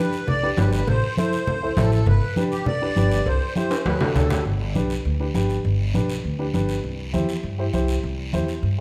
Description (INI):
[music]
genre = latin, cumbia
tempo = 201 BPM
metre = 4/4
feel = straight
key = G major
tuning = A4 = 440 Hz
[part]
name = accordion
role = second line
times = 0.0-4.4 s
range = G4 to D5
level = -29 LUFS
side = equal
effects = light tremolo tuning
[part]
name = dark upright piano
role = accompaniment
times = 0.0-8.8 s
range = D4 to C5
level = -29 LUFS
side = equal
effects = none
[part]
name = guiro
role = percussion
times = 0.1-8.8 s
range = none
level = -40 LUFS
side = equal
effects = none
[part]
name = upright bass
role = bass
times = 0.3-8.8 s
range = G1 to G2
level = -25 LUFS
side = equal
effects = none
[part]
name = congas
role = percussion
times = 0.3-8.8 s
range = none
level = -29 LUFS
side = equal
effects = none
[part]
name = cowbell and timbales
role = percussion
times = 0.3-4.4 s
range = none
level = -32 LUFS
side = equal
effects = none
[sound]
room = moderate large studio reverb, RT60 1.4 s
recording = none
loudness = -22 LUFS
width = mono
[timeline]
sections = 0.0-4.5 A section; 4.5-8.8 B section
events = drum fill 3.6-4.5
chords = 0.0 G; 0.9 Am; 2.1 G; 3.3 C; 3.9 D; 4.5 G; 6.8 C